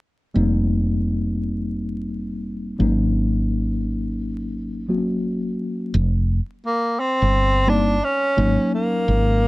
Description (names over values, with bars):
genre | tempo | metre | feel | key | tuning
hip hop | 86 BPM | 4/4 | swing 66% on 16ths | unclear | A4 = 439 Hz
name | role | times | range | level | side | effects
mellow tine electric piano | accompaniment | 0.3-9.5 s | Gb3 to Gb4 | -23 LUFS | left 1 dB | medium stereo tremolo
woody fretless electric bass | bass | 0.4-9.5 s | F1 to Ab1 | -21 LUFS | equal | wide subtle chorus
breathy tenor saxophone | melody | 6.7-9.5 s | Bb3 to D4 | -20 LUFS | equal | none
room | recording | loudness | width
little or no reverb | dry, close 1970s-style studio recording, vinyl crackle | -19 LUFS | side -20 dB against mid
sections
0.4-5.9 A section; 5.9-9.5 B section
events
none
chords
0.4 F9sus4; 2.8 Ab9sus4; 5.9 Fsus2; 8.4 Ab9sus4